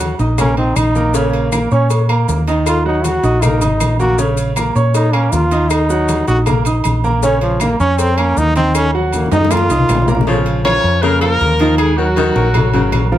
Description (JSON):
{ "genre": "latin, salsa", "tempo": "158 BPM", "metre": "4/4", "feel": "straight", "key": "Bb minor", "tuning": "A4 = 440 Hz", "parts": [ { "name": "bright upright piano", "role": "accompaniment", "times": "0.0-13.2 s", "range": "Db3 to Eb6", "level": "-19 LUFS", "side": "right 2 dB", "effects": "none" }, { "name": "hollow-body short-scale fingered electric bass", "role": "bass", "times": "0.0-13.2 s", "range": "Ab1 to Bb2", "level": "-16 LUFS", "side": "equal", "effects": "none" }, { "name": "agogo bells and timbales", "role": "percussion", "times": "0.0-13.1 s", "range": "none", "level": "-25 LUFS", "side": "right 6 dB", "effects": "none" }, { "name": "congas", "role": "percussion", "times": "0.0-13.2 s", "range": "none", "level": "-23 LUFS", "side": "left 2 dB", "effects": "none" }, { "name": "cowbell and bongos", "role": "percussion", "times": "0.0-13.1 s", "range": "none", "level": "-25 LUFS", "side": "left 7 dB", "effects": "none" }, { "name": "maracas", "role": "percussion", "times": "0.0-10.3 s", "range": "none", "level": "-29 LUFS", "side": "left 8 dB", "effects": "none" }, { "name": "brilliant trombone", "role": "melody", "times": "0.4-10.2 s", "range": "F3 to Gb4", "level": "-17 LUFS", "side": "equal", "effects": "none" }, { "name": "claves", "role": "percussion", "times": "0.4-13.1 s", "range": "none", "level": "-28 LUFS", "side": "left 10 dB", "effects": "none" }, { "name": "warm baritone saxophone", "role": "second line", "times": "10.3-13.1 s", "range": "Db3 to F3", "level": "-20 LUFS", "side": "left 4 dB", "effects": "none" }, { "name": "clear horn section", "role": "melody", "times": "10.7-13.1 s", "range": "Gb3 to Db5", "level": "-16 LUFS", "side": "left 1 dB", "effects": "none" } ], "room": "light reverb", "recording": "none", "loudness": "-12 LUFS", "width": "side -12 dB against mid", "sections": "0.0-10.3 A section; 10.3-13.2 B section", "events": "trombone solo 0.0-10.3; drum fill 9.1-10.3", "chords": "0.0 Ebm; 1.1 Bbm; 2.7 Ebm; 4.2 Bbm; 5.7 Ebm; 7.2 Bbm; 8.7 Ebm; 10.3 Bbm; 11.8 Ebm", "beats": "0.00 0.38 0.76 | 1.14 1.52 1.90 2.28 | 2.67 3.04 3.43 3.81 | 4.19 4.57 4.95 5.33 | 5.71 6.09 6.47 6.85 | 7.23 7.61 7.99 8.37 | 8.75 9.13 9.51 9.89 | 10.27 10.65 11.03 11.41 | 11.79 12.17 12.55 12.93" }